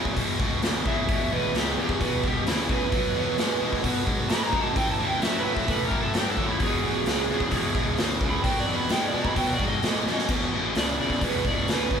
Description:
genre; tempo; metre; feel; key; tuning
blues rock power trio and southern rock; 130 BPM; 4/4; straight; E mixolydian; A4 = 441 Hz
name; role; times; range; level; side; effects
overdriven tonewheel organ; sustained chords; 0.0-9.4 s; G#3 to F#5; -40 LUFS; right 4 dB; none
distorted electric guitar; riff; 0.0-12.0 s; E2 to G#3; -27 LUFS; equal; overdrive
fuzz fingered electric bass; bass; 0.0-12.0 s; E1 to B2; -34 LUFS; equal; overdrive
raw garage drum kit; drums; 0.1-12.0 s; crash cymbal, hi-hat, kick drum, snare drum; -27 LUFS; left 1 dB; none
overdriven slide guitar; melody; 0.9-12.0 s; E4 to B5; -29 LUFS; right 3 dB; tape echo
room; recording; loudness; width
moderate large studio reverb, RT60 0.8 s; band playing live in one room; -22 LUFS; side -7 dB against mid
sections
0.0-10.3 A section; 10.3-12.0 B section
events
electric slide guitar solo 0.0-10.3; drum fill 10.1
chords
0.0 E7; 2.9 B7; 4.8 A7; 6.6 E7; 8.4 B7; 10.3 E7(no3)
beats
0.17 0.63 | 1.09 1.55 2.01 2.47 | 2.93 3.39 3.85 4.30 | 4.76 5.22 5.68 6.15 | 6.61 7.07 7.53 7.99 | 8.45 8.91 9.37 9.83 | 10.29 10.76 11.22 11.68

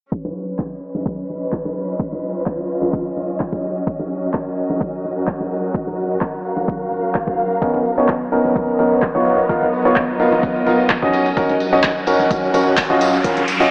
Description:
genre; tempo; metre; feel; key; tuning
piano house; 128 BPM; 4/4; swing 53% on 16ths; unclear; A4 = 442 Hz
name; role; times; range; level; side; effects
electronic kick drum; drums; 0.1-13.3 s; none; -24 LUFS; equal; overdrive
tambourine and congas; percussion; 0.1-13.7 s; none; -28 LUFS; equal; none
warm symphonic string section; texture; 0.1-13.7 s; Cb4 to F5; -22 LUFS; equal; sidechain pumping
electronic handclaps; drums; 0.6-12.9 s; none; -23 LUFS; equal; overdrive, low-pass filter on snare
clear grand piano; riff; 7.6-13.7 s; Cb4 to Eb5; -15 LUFS; equal; sidechain pumping, tape echo
breakbeat sampler-style drum kit; drums; 7.6-13.7 s; hi-hat, snare drum; -34 LUFS; equal; none
riser; sound effects; 12.4-13.7 s; none; -23 LUFS; equal; none
room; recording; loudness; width
moderate lush hall reverb, RT60 1.6 s, small room ambience; low-pass filter, small speaker sound; -16 LUFS; side -37 dB against mid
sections
0.1-13.7 A section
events
filter sweep on drum 0.1-13.7; filter sweep 0.1-13.7; riser 12.4-13.7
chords
0.1 Cbadd9; 1.8 Db9; 3.6 Ebm7; 5.5 Gbmaj7; 7.6 Cbmaj9; 11.1 Ebm7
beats
| 0.12 0.59 1.06 1.52 | 1.99 2.46 2.93 3.40 | 3.87 4.34 4.81 5.28 | 5.74 6.21 6.68 7.15 | 7.62 8.09 8.56 9.03 | 9.49 9.96 10.43 10.90 | 11.37 11.84 12.31 12.78 | 13.24

